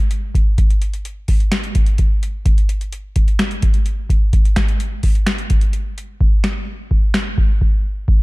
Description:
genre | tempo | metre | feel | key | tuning
hip hop | 128 BPM | 4/4 | half-time | none | none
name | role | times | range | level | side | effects
booming analog drum machine | drums | 0.1-8.2 s | finger snaps, hi-hat, kick drum, snare drum | -15 LUFS | equal | none
room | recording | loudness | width
little or no reverb | dark, warm production | -15 LUFS | side -22 dB against mid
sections
0.0-6.2 A section; 6.2-8.2 B section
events
hi-hats muted 6.2-8.2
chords
none

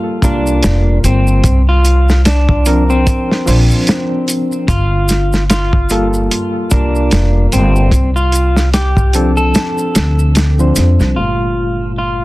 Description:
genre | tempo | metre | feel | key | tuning
trip hop | 74 BPM | 4/4 | swing 58% on 16ths | G minor | A4 = 438 Hz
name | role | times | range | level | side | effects
reed electric piano | accompaniment | 0.0-12.2 s | Bb2 to C5 | -18 LUFS | left 1 dB | overdrive, harmonic tremolo, tape echo
electric guitar at the edge of break-up | melody | 0.2-12.2 s | C4 to A4 | -18 LUFS | equal | tape echo
upright bass | bass | 0.2-12.2 s | F1 to F2 | -13 LUFS | equal | none
warm soul drum kit | drums | 0.2-11.2 s | hi-hat, kick drum, snare drum | -15 LUFS | equal | none
maracas | percussion | 0.2-11.1 s | none | -25 LUFS | equal | none
room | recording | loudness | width
small room ambience | dense, heavily limited modern master | -10 LUFS | side -18 dB against mid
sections
0.0-11.2 A section; 11.2-12.2 B section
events
kick drops out 9.6-11.2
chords
0.0 Gm9; 1.4 C9sus4; 4.7 Gm9; 7.9 Dm7; 11.2 Gm9

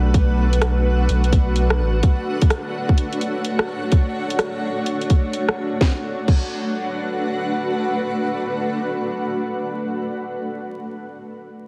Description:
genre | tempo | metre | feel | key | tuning
future garage | 127 BPM | 4/4 | swing 63% on 16ths | B minor | A4 = 441 Hz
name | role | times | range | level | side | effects
granular cloud pad | sustained chords | 0.0-9.6 s | A3 to F#5 | -26 LUFS | equal | built-in reverb, sidechain pumping
warm sub bass | bass | 0.0-2.0 s | A1 to B1 | -20 LUFS | equal | sidechain pumping
electronic kick drum | drums | 0.1-6.4 s | none | -18 LUFS | equal | vintage 12-bit sampler grit
garage drum kit | drums | 0.1-6.4 s | crash cymbal, hi-hat, rim click, snare drum | -28 LUFS | equal | vintage 12-bit sampler grit
room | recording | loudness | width
moderate concert hall reverb, RT60 2.0 s | heavily compressed radio sound, multiband compression, vinyl crackle | -21 LUFS | mono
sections
0.0-5.8 A section; 5.8-9.6 B section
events
none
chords
0.0 Bm7

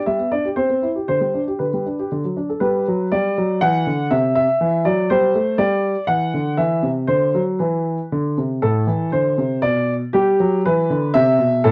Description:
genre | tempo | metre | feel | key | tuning
classical-period piano sonatina | 119 BPM | 3/4 | straight | G major | A4 = 440 Hz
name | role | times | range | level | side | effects
clear baby grand piano | solo | 0.0-11.7 s | A2 to F#5 | -19 LUFS | equal | none
room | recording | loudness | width
light reverb | worn, warbling old tape, cassette tape, warbly pitch drift | -19 LUFS | mono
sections
0.0-2.6 A section; 2.6-11.7 B section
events
none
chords
0.0 G; 0.6 C; 1.1 G/D; 2.1 D; 2.6 G; 4.1 C; 5.6 G5; 6.6 C; 7.1 D13; 8.1 Csus2; 8.6 Amadd11; 9.6 N.C.; 10.1 Em; 11.1 Cmaj7

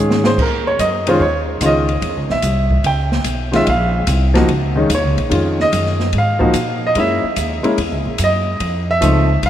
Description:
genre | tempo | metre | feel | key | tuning
jazz piano trio | 146 BPM | 4/4 | swing 67% on 8ths | Bb minor | A4 = 441 Hz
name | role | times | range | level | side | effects
warm baby grand piano | melody | 0.0-9.5 s | Eb3 to G5 | -16 LUFS | equal | none
upright bass | bass | 0.0-9.5 s | Bb1 to Bb2 | -18 LUFS | equal | none
open jazz drum kit | drums | 0.1-9.5 s | crash cymbal, hi-hat, kick drum, ride cymbal, snare drum | -23 LUFS | equal | none
room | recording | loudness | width
wet cathedral reverb, RT60 4.8 s | in a vast, echoing space | -14 LUFS | side -11 dB against mid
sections
0.0-9.5 A section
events
drum fill 0.0-0.4; grand piano solo 0.0-9.5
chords
0.4 Ebm9; 2.0 Em6; 3.7 Bbm9; 7.0 Gb7; 8.6 F7

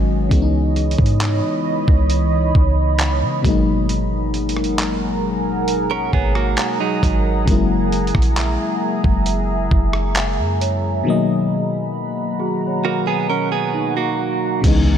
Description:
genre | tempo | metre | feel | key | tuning
contemporary R&B | 67 BPM | 4/4 | straight | C# dorian | A4 = 439 Hz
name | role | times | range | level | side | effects
FM electric piano | accompaniment | 0.0-15.0 s | B2 to D#5 | -22 LUFS | left 5 dB | chorus
deep dark ambient pad | sustained chords | 0.0-15.0 s | E3 to C#6 | -24 LUFS | right 3 dB | chorus, built-in reverb, sidechain pumping
clean 808-style bass | bass | 0.0-15.0 s | F#1 to C#3 | -20 LUFS | equal | none
large celesta | texture | 0.0-15.0 s | D#4 to E5 | -32 LUFS | right 5 dB | tape echo
dusty soul sampler-style drum kit | drums | 0.3-14.8 s | crash cymbal, handclaps, hi-hat, kick drum, rim click | -20 LUFS | equal | none
direct-recorded clean electric guitar | arpeggios | 5.9-7.4, 12.8-14.6 s | F#3 to A#4 | -22 LUFS | right 11 dB | tape echo
impact | sound effects | 14.8-15.0 s | none | -24 LUFS | right 3 dB | none
room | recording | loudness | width
light reverb | none | -16 LUFS | side -9 dB against mid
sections
0.3-14.6 A section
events
impact 14.6-15.0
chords
0.3 C#m9; 3.4 G#m9; 7.5 F#9; 11.1 Bmaj7

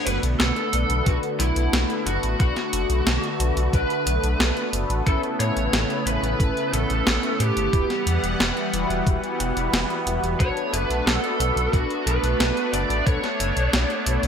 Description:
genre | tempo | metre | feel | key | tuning
synthwave | 90 BPM | 4/4 | straight | B minor | A4 = 440 Hz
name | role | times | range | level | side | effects
lead guitar through a small cranked amp | melody | 0.0-14.3 s | E4 to D5 | -26 LUFS | equal | overdrive, lush chorus, digital delay
lush unison pad | sustained chords | 0.0-14.3 s | C#3 to F#5 | -28 LUFS | right 2 dB | chorus, phaser, sidechain pumping
mellow synth brass | stabs | 0.0-14.3 s | C#4 to B4 | -30 LUFS | left 3 dB | chorus, vintage 12-bit sampler grit, ping-pong delay
dark detuned saw bass | bass | 0.1-14.3 s | E1 to A2 | -25 LUFS | equal | none
clean 12-bit digital drum machine | drums | 0.1-14.3 s | hi-hat, snare drum | -25 LUFS | equal | overdrive, gated reverb
electronic kick drum | drums | 1.1-13.2 s | none | -22 LUFS | equal | overdrive
room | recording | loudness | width
light reverb | bright 1980s-style digital production | -20 LUFS | side -7 dB against mid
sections
0.0-14.3 A section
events
none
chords
0.0 Bm7; 5.1 Aadd9; 7.7 Emadd9; 10.4 Bm7

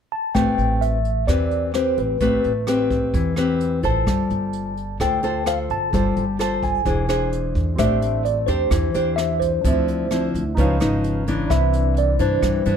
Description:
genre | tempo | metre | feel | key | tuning
bossa nova | 129 BPM | 4/4 | straight | A minor | A4 = 439 Hz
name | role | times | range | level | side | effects
mellow tine electric piano | melody | 0.1-12.8 s | B4 to A5 | -23 LUFS | right 1 dB | medium stereo tremolo
nylon-string guitar | accompaniment | 0.3-12.8 s | G2 to C5 | -22 LUFS | left 3 dB | none
upright bass | bass | 0.3-12.8 s | E1 to G2 | -24 LUFS | right 1 dB | none
jazz brush drum kit | drums | 0.3-12.8 s | hi-hat, kick drum, rim click | -29 LUFS | right 1 dB | none
warm grand piano | accompaniment | 7.8-12.8 s | C4 to B5 | -31 LUFS | right 4 dB | none
room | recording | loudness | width
light reverb | none | -18 LUFS | side -8 dB against mid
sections
0.3-7.8 A section; 7.8-12.8 B section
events
none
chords
0.3 Am9; 4.1 G9sus4; 6.9 E7b13; 7.8 Am7; 9.6 Dm9; 10.6 C#9; 11.5 Cmaj9

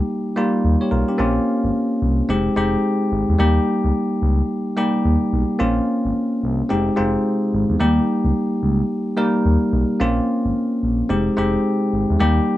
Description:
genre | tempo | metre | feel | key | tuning
R&B, new jack swing | 109 BPM | 4/4 | swing 61% on 16ths | unclear | A4 = 440 Hz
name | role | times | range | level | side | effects
bell-like tine electric piano | accompaniment | 0.0-12.6 s | G3 to Db5 | -18 LUFS | equal | none
smooth gliding synth bass | bass | 0.6-12.4 s | F1 to E2 | -20 LUFS | equal | none
room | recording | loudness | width
light reverb | none | -17 LUFS | side -15 dB against mid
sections
0.0-12.6 A section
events
none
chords
0.0 Eb; 1.2 Bbmadd9; 2.3 Fm7; 3.4 Eb; 5.6 Bbmadd9; 6.7 Fm7; 7.8 Eb; 10.0 Bbmadd9; 11.1 Fm7

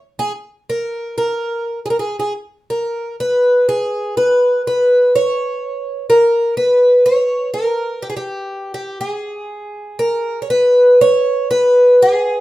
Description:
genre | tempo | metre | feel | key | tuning
fado | 61 BPM | 2/4 | rubato | unclear | A4 = 440 Hz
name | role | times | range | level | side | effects
picked twelve-string acoustic guitar | solo | 0.2-12.4 s | G4 to C#5 | -13 LUFS | equal | none
room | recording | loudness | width
wet studio reverb, RT60 0.6 s | rough home demo mix | -13 LUFS | side -16 dB against mid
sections
0.0-11.0 A section; 11.0-12.4 B section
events
none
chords
none

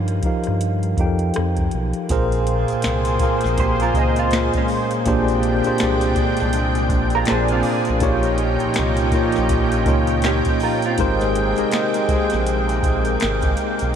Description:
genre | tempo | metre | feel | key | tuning
R&B, neo-soul | 81 BPM | 4/4 | swing 60% on 16ths | Bb dorian | A4 = 439 Hz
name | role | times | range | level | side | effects
tine electric piano | accompaniment | 0.0-14.0 s | Bb2 to G5 | -21 LUFS | left 1 dB | medium stereo tremolo
round analog bass | bass | 0.0-13.9 s | Ab1 to G2 | -23 LUFS | equal | none
soft vintage rhythm box | drums | 0.1-13.9 s | finger snaps, hi-hat, kick drum, rim click, snare drum | -25 LUFS | equal | none
lush unison pad | sustained chords | 2.1-14.0 s | Bb2 to G5 | -24 LUFS | equal | chorus
mellow horn section | stabs | 2.1-13.5 s | C3 to Bb4 | -29 LUFS | right 3 dB | ping-pong delay
tube shaker and finger snaps | percussion | 2.1-13.9 s | none | -37 LUFS | left 7 dB | none
vintage hollow-body jazz guitar | second line | 3.6-11.2 s | Ab3 to C5 | -28 LUFS | right 6 dB | analog chorus
room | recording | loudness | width
moderate huge ambient reverb, RT60 8.3 s | dreamy mix soaked in reverb | -17 LUFS | side -8 dB against mid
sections
0.0-2.1 A section; 2.1-14.0 B section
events
none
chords
0.0 F9sus4; 2.1 Bbm9; 5.1 Bb13; 7.3 Bb9; 8.0 Eb9/Bb; 11.0 Abmaj9

